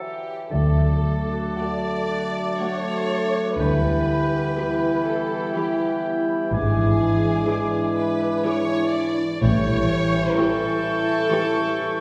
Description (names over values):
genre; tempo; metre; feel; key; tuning
classical, slow romantic movement for symphony orchestra; 62 BPM; 3/4; rubato; D major; A4 = 442 Hz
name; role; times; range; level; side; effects
clear oboe; second line; 0.0-12.0 s; A4 to A5; -36 LUFS; equal; none
warm clarinet; second line; 0.0-12.0 s; E4 to F#4; -33 LUFS; equal; none
warm symphonic violin section; second line; 0.0-12.0 s; G4 to D5; -31 LUFS; equal; none
mellow bassoon; accompaniment; 0.0-12.0 s; E3 to A3; -32 LUFS; equal; none
concert harp; arpeggios; 0.0-12.0 s; G#2 to A5; -33 LUFS; equal; none
silver concert flute; second line; 0.5-12.0 s; B5 to D6; -36 LUFS; equal; none
mellow trombone section; sustained chords; 0.5-12.0 s; E3 to A3; -31 LUFS; equal; none
warm French horn section; sustained chords; 0.5-12.0 s; B3 to A4; -31 LUFS; equal; none
clear symphonic double bass section; bass; 0.5-10.2 s; G#1 to D2; -27 LUFS; equal; none
warm symphonic cello section; bass; 0.5-10.2 s; G#2 to D3; -30 LUFS; equal; none
warm symphonic violin section; melody; 1.6-12.0 s; F#5 to D6; -42 LUFS; equal; none
warm symphonic viola section; accompaniment; 1.6-12.0 s; E3 to G#4; -34 LUFS; equal; none
room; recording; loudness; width
wet concert hall reverb, RT60 1.9 s; heard from further back in the room; -22 LUFS; mono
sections
0.5-12.0 A section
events
none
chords
0.0 D; 3.6 Em/D; 6.5 E7/G#; 9.4 A7